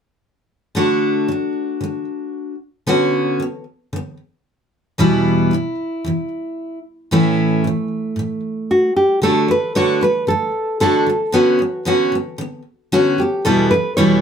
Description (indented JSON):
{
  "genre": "acoustic pop",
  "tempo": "114 BPM",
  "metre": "4/4",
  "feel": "swing 55% on 16ths",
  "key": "D major",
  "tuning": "A4 = 440 Hz",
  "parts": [
    { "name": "picked steel-string acoustic guitar", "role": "accompaniment", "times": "0.7-14.2 s", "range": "E2 to F#4", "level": "-17 LUFS", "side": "equal", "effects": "none" },
    { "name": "nylon-string guitar", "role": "melody", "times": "8.7-14.2 s", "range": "F#4 to C#5", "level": "-16 LUFS", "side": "equal", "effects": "plate reverb" }
  ],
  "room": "moderate studio reverb, RT60 0.5 s",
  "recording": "none",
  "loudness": "-15 LUFS",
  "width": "side -7 dB against mid",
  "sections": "0.8-9.2 A section; 9.2-14.2 B section",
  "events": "none",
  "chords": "0.8 D; 2.9 Bmadd9/D; 5.0 Em; 7.1 A; 9.2 D; 11.3 Bmadd9/D; 13.4 Em"
}